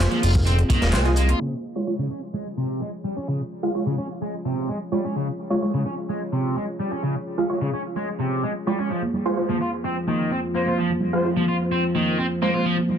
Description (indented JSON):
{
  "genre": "breakbeat, breaks",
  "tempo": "128 BPM",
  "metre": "4/4",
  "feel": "straight",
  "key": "unclear",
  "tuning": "A4 = 440 Hz",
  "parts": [
    { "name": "dark analog pad", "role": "sustained chords", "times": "0.0-13.0 s", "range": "F3 to Db5", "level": "-29 LUFS", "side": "left 1 dB", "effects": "chorus, sidechain pumping" },
    { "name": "orchestra-hit-like synth stab", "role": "stabs", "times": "0.0-12.6 s", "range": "Ab3 to F5", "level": "-27 LUFS", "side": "right 2 dB", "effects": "built-in reverb, dub echo" },
    { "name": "fat analog bass", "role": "bass", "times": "0.0-1.3 s", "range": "Eb1 to C2", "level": "-19 LUFS", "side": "equal", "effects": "tube saturation" },
    { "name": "house drum kit", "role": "drums", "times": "0.0-1.4 s", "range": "handclaps, hi-hat", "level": "-32 LUFS", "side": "left 1 dB", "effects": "none" },
    { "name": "distorted electric guitar", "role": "riff", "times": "0.1-12.8 s", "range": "C3 to F4", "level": "-26 LUFS", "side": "equal", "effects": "distortion, overdrive, low-pass filter, dub echo" },
    { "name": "congas", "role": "percussion", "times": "0.1-1.4, 9.0-13.0 s", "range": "none", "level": "-29 LUFS", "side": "right 2 dB", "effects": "none" },
    { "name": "crunchy breakbeat drum kit", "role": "drums", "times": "0.2-1.3 s", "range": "hi-hat, kick drum, snare drum", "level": "-24 LUFS", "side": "equal", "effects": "none" },
    { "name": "breathy flute-like synth lead", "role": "melody", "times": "10.5-12.6 s", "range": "C5", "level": "-29 LUFS", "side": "left 1 dB", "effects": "chorus, small speaker sound, vintage 12-bit sampler grit, dub echo" }
  ],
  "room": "moderate studio reverb, RT60 0.5 s",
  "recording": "dense, heavily limited modern master, vinyl crackle, low-pass filter",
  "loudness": "-21 LUFS",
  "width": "side -8 dB against mid",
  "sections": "0.0-1.4 A section; 1.4-13.0 B section",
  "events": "band accent 0.9; filter sweep on analog synth pad 1.4-13.0; filter sweep 1.4-13.0",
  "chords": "0.0 Fm; 1.4 Db; 8.9 Fm"
}